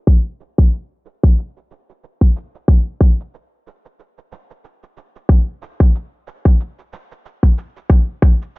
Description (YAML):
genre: downtempo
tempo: 92 BPM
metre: 4/4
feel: swing 57% on 16ths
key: none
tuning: none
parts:
  - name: cabasa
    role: drums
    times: 0.1-8.6 s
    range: none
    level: -47 LUFS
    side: right 7 dB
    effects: small room ambience
  - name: electronic kick drum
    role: drums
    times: 0.1-8.4 s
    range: none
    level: -11 LUFS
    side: equal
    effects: small room ambience
room: digital ambience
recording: blown-out, overdriven recording, overdrive, low-pass filter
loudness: -14 LUFS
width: side -24 dB against mid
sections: 0.0-8.6 A section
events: filter sweep 0.0-8.6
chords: none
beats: | 0.07 0.72 1.38 2.03 | 2.68 3.33 3.99 4.64 | 5.29 5.94 6.59 7.25 | 7.90 8.55